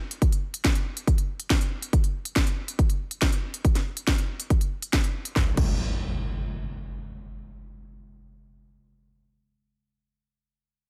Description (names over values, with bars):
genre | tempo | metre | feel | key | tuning
uplifting trance | 140 BPM | 4/4 | straight | none | none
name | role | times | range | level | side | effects
house drum kit | drums | 0.1-5.7 s | crash cymbal, hi-hat, snare drum | -32 LUFS | equal | studio reverb
electronic kick drum | drums | 0.2-5.7 s | none | -25 LUFS | equal | studio reverb
impact | sound effects | 5.4-8.6 s | none | -34 LUFS | equal | none
room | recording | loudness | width
little or no reverb | none | -26 LUFS | mono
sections
0.0-5.4 A section; 5.4-8.8 B section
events
none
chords
none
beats
| 0.22 0.65 1.07 1.50 | 1.93 2.36 2.79 3.22 | 3.65 4.08 4.50 4.93 | 5.36 5.79 6.22 6.65 | 7.08 7.50 7.93 8.36